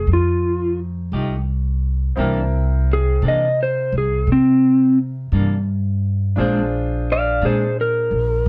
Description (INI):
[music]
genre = slow blues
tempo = 57 BPM (dotted quarters)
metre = 12/8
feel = straight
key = unclear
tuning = A4 = 440 Hz
[part]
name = electric slide guitar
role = melody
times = 0.0-8.5 s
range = C4 to F5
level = -20 LUFS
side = equal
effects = none
[part]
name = bright grand piano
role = accompaniment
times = 0.0-8.5 s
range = A3 to G5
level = -30 LUFS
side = equal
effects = none
[part]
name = upright bass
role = bass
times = 0.0-8.5 s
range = Bb1 to C3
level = -22 LUFS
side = equal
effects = none
[part]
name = clean electric guitar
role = accompaniment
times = 1.1-7.6 s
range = Bb2 to G4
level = -27 LUFS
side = equal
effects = tremolo
[sound]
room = moderate studio reverb, RT60 0.6 s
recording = band playing live in one room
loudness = -19 LUFS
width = mono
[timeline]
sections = 0.0-8.5 A section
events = none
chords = 0.0 F9; 2.2 C9; 6.4 Bb9